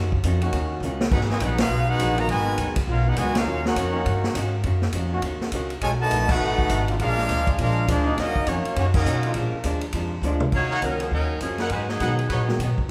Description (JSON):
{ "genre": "jazz, big band swing", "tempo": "204 BPM", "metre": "4/4", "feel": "swing 62% on 8ths", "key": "Eb minor", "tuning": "A4 = 435 Hz", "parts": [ { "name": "archtop guitar, miked and amplified", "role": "accompaniment", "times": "0.0-12.8 s", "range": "Ab2 to Gb4", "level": "-34 LUFS", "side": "equal", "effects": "none" }, { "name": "warm trombone section", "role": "sustained chords", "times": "0.0-10.5 s", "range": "Db3 to Gb4", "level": "-35 LUFS", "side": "equal", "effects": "none" }, { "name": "upright bass", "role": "bass", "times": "0.0-12.9 s", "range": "Ab1 to Cb3", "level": "-27 LUFS", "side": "equal", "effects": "none" }, { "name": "swinging big-band drum kit", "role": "drums", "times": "0.1-12.8 s", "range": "crash cymbal, hi-hat, kick drum, ride cymbal, snare drum, toms", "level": "-30 LUFS", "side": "equal", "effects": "none" }, { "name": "clear trumpet section", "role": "melody", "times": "1.1-9.8 s", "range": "Bb3 to Bb5", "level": "-29 LUFS", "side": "equal", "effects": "none" }, { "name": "brilliant trombone section", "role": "second line", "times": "1.1-9.8 s", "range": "Cb3 to Gb4", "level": "-31 LUFS", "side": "equal", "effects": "none" }, { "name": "clear saxophone section", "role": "melody", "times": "10.5-12.6 s", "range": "F3 to Db5", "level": "-30 LUFS", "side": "equal", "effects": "none" }, { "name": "clear trumpet section", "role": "stabs", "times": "10.7-12.4 s", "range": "Eb4 to Gb5", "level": "-33 LUFS", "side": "equal", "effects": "none" }, { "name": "warm grand piano", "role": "accompaniment", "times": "10.8-12.9 s", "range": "Eb3 to Gb4", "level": "-33 LUFS", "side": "equal", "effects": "none" } ], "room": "moderate recital hall reverb, RT60 1.4 s", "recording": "recorded in a church or concert hall", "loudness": "-23 LUFS", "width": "mono", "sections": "0.0-10.5 A section; 10.5-12.9 B section", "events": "drum fill 0.8, 10.2; band accent 1.6, 3.3, 6.3, 8.9", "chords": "0.0 Ebm7; 1.1 Abm7; 3.5 Ebm7; 5.8 B7; 7.0 Bb7; 8.2 Ebm7; 9.3 Bb7; 10.5 Ebm7; 11.7 Abm7" }